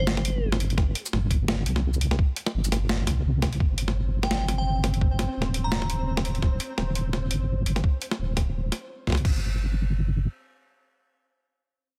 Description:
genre	half-time drum and bass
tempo	170 BPM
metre	4/4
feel	swing 56% on 16ths, half-time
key	G minor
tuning	A4 = 442 Hz
part	glassy synth bell	melody	0.0-0.5, 4.2-6.1 s	C5 to Bb5	-36 LUFS	equal	chorus, vintage 12-bit sampler grit, digital delay
part	deep soft wobble bass	bass	0.0-10.3 s	D1 to C2	-28 LUFS	equal	chorus
part	boom bap sampler-style drum kit	drums	0.1-9.3 s	crash cymbal, hi-hat, shaker, snare drum	-32 LUFS	equal	small room reverb
part	electronic kick drum	drums	0.8-9.3 s	none	-25 LUFS	equal	small room reverb
part	pulsing gated texture	texture	3.6-9.3 s	C4 to C5	-41 LUFS	equal	chorus, built-in reverb
room	little or no reverb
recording	none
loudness	-26 LUFS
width	mono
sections	0.0-3.6 A section; 3.6-9.2 B section; 9.2-12.0 C section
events	drop 0.0-3.6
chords	0.0 C5; 3.6 G5; 9.2 N.C.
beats	0.07 0.43 | 0.78 1.13 1.49 1.84 | 2.19 2.54 2.90 3.25 | 3.60 3.96 4.31 4.66 | 5.01 5.37 5.72 6.07 | 6.43 6.78 7.13 7.49 | 7.84 8.19 8.54 8.90 | 9.25 9.60 9.96

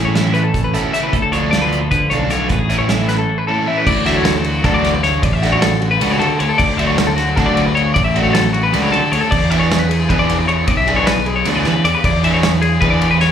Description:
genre	math rock and midwest emo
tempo	308 BPM (eighths)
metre	7/8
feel	straight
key	unclear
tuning	A4 = 440 Hz
part	twelve-string electric guitar	accompaniment	0.0-5.2 s	A2 to A4	-24 LUFS	right 8 dB	spring reverb, slapback echo
part	twelve-string electric guitar	arpeggios	0.0-13.3 s	F#4 to E5	-18 LUFS	left 4 dB	slapback echo
part	biting overdriven guitar	riff	0.0-13.1 s	D3 to G#4	-19 LUFS	right 2 dB	slapback echo
part	fuzz picked electric bass	bass	0.0-13.3 s	A1 to E3	-18 LUFS	equal	overdrive
part	loose indie drum kit	drums	0.2-13.3 s	crash cymbal, hi-hat, kick drum, ride cymbal, snare drum	-20 LUFS	equal	none
room	little or no reverb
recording	live gig heard through the venue's PA, club reverb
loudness	-13 LUFS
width	side -8 dB against mid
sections	0.0-3.9 A section; 3.9-13.3 B section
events	none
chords	0.0 Amaj9; 1.1 Dm; 2.5 Amaj9; 3.9 Dmaj9; 9.3 E6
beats	0.15 0.34 0.54 0.73 0.93 | 1.13 1.32 1.52 1.72 1.91 2.11 2.30 | 2.50 2.69 2.89 3.08 3.28 3.48 3.67 | 3.87 4.06 4.26 4.45 4.65 4.84 5.04 | 5.23 5.43 5.62 5.82 6.01 6.21 6.40 | 6.59 6.79 6.98 7.18 7.37 7.57 7.76 | 7.96 8.15 8.35 8.54 8.73 8.93 9.12 | 9.32 9.51 9.71 9.90 10.10 10.29 10.48 | 10.68 10.87 11.07 11.26 11.46 11.65 11.85 | 12.04 12.24 12.43 12.62 12.82 13.01 13.21

